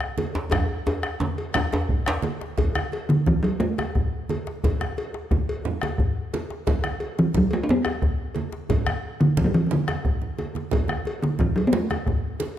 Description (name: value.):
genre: west african traditional, West African drum ensemble.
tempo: 118 BPM (dotted quarters).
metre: 12/8.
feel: straight.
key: D major pentatonic.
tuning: A4 = 440 Hz.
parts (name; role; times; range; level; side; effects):
bombo; percussion; 0.0-12.2 s; none; -27 LUFS; equal; none.
congas; percussion; 0.2-12.6 s; none; -31 LUFS; right 4 dB; none.
cowbell; percussion; 0.2-12.6 s; none; -33 LUFS; left 2 dB; none.
djembe; percussion; 0.4-12.5 s; none; -30 LUFS; left 4 dB; none.
djembe; percussion; 0.4-2.2 s; none; -27 LUFS; right 1 dB; none.
talking drum; melody; 3.1-12.4 s; D3 to D4; -21 LUFS; equal; none.
room: light reverb.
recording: none.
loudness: -22 LUFS.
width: side -11 dB against mid.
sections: 0.0-2.6 A section; 2.6-12.6 B section.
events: drum fill 0.5-2.6, 10.2-10.7.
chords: none.